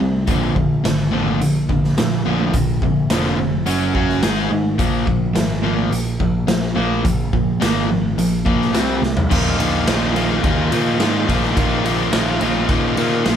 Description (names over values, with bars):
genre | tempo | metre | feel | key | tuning
classic rock | 106 BPM | 4/4 | straight | unclear | A4 = 440 Hz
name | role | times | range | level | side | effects
crunchy overdriven guitar | riff | 0.0-13.4 s | Bb2 to Ab4 | -21 LUFS | left 6 dB | none
crunchy overdriven guitar | riff | 0.0-13.4 s | Bb2 to Ab4 | -21 LUFS | right 5 dB | none
modern bright picked electric bass | bass | 0.0-13.4 s | F1 to Bb2 | -23 LUFS | equal | none
raw garage drum kit | drums | 0.3-13.4 s | crash cymbal, hi-hat, kick drum, ride cymbal, snare drum, toms | -21 LUFS | equal | none
room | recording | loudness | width
moderate studio ambience, RT60 0.5 s | band playing live in one room | -16 LUFS | side -8 dB against mid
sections
0.0-9.3 A section; 9.3-13.4 B section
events
drum fill 9.0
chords
0.3 Bb; 3.7 F#5; 4.2 Ab5; 4.8 Bb5; 8.7 C5; 9.3 Bbsus4